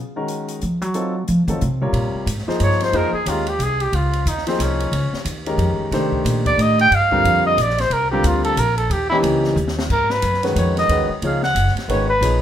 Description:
modal jazz; 181 BPM; 3/4; swing 61% on 8ths; Bb dorian; A4 = 440 Hz
warm concert grand piano; accompaniment; 0.2-12.4 s; C3 to C#5; -22 LUFS; left 1 dB
open jazz drum kit; drums; 0.3-12.3 s; crash cymbal, hi-hat, kick drum, ride cymbal, snare drum; -29 LUFS; equal
upright bass; bass; 0.6-12.4 s; F#1 to F#3; -21 LUFS; equal
mellow trumpet; melody; 2.6-12.4 s; C4 to G5; -19 LUFS; right 1 dB
moderate large studio reverb, RT60 1.2 s; minimal, uncompressed stereo recording; -16 LUFS; side -10 dB against mid
0.0-1.9 A section; 1.9-9.9 A section; 9.9-12.4 A section
upright bass solo 0.0-1.9; trumpet solo 1.9-12.4; drum fill 9.6-9.9
0.0 G#7sus2; 0.9 F7b9; 1.9 Bbm11; 5.9 Cm11; 8.9 Eb7b9; 9.9 G#m9

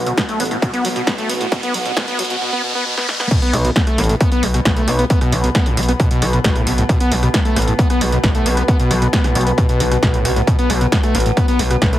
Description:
driving peak-time techno; 134 BPM; 4/4; straight; A4 = 440 Hz
gritty driven synth bass; bass; 0.0-12.0 s; A1 to B1; -19 LUFS; equal; sidechain pumping
riser; sound effects; 0.0-3.3 s; -24 LUFS; equal
warbly tape-like pad; texture; 0.0-2.4 s; B3 to F#5; -26 LUFS; right 2 dB; chorus, built-in reverb, sidechain pumping
overdriven acid bass; riff; 0.1-12.0 s; A2 to B3; -20 LUFS; equal; wide subtle chorus, sidechain pumping, dub echo
punchy analog drum machine; drums; 0.1-12.0 s; crash cymbal, hi-hat, rim click, snare drum; -22 LUFS; equal; sidechain pumping on hats, sidechain pumping on cymbals
electronic kick drum; drums; 0.2-11.9 s; -17 LUFS; equal; distortion, overdrive
metallic inharmonic drone; drone; 4.5-12.0 s; B2 to B3; -24 LUFS; left 1 dB; chorus, built-in reverb, sidechain pumping
light reverb; heavily compressed radio sound, multiband compression, high-pass filter; -14 LUFS; side -13 dB against mid
0.0-3.3 A section; 3.3-12.0 B section
build-up 0.0-3.3; riser 0.0-3.3; filter sweep on acid bass 0.0-3.3; filter sweep 0.0-3.3; drum fill 3.0-3.3; drop 3.3-12.0
0.0 B5

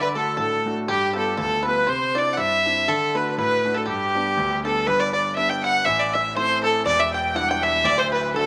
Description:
celtic folk, Celtic polka; 121 BPM; 2/4; swing 55% on 8ths; G major; A4 = 440 Hz
clear fiddle; melody; 0.0-8.5 s; G4 to G5; -24 LUFS; equal
accordion; second line; 0.0-8.5 s; G4 to G5; -31 LUFS; equal; slapback echo
bluegrass banjo; second line; 0.0-8.5 s; G4 to G5; -30 LUFS; equal
clear concert grand piano; accompaniment; 0.0-8.5 s; D1 to F#4; -30 LUFS; equal
moderate echo chamber reverb, RT60 1.8 s, small room ambience; -21 LUFS; mono
0.0-4.9 A section; 4.9-8.5 B section
0.0 D; 0.9 G7; 1.9 Cadd9; 2.9 D; 3.9 G; 5.9 Am; 6.9 Em7; 7.8 D

